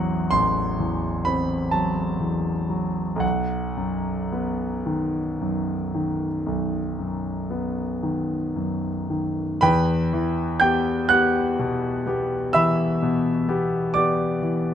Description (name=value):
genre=classical, romantic nocturne for solo piano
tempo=36-44 BPM (dotted quarters)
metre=12/8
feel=rubato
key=E minor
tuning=A4 = 441 Hz
part: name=warm concert grand piano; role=solo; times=0.0-14.7 s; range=A1 to G6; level=-21 LUFS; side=equal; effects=none
room=light reverb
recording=close, detailed microphones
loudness=-21 LUFS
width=side -9 dB against mid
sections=0.0-9.6 A section; 9.6-14.7 B section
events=none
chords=0.0 F#m7b5/A; 3.2 B; 9.6 Em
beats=0.33 1.73 | 3.22 4.87 6.47 8.04 | 9.63 11.11 12.55 13.95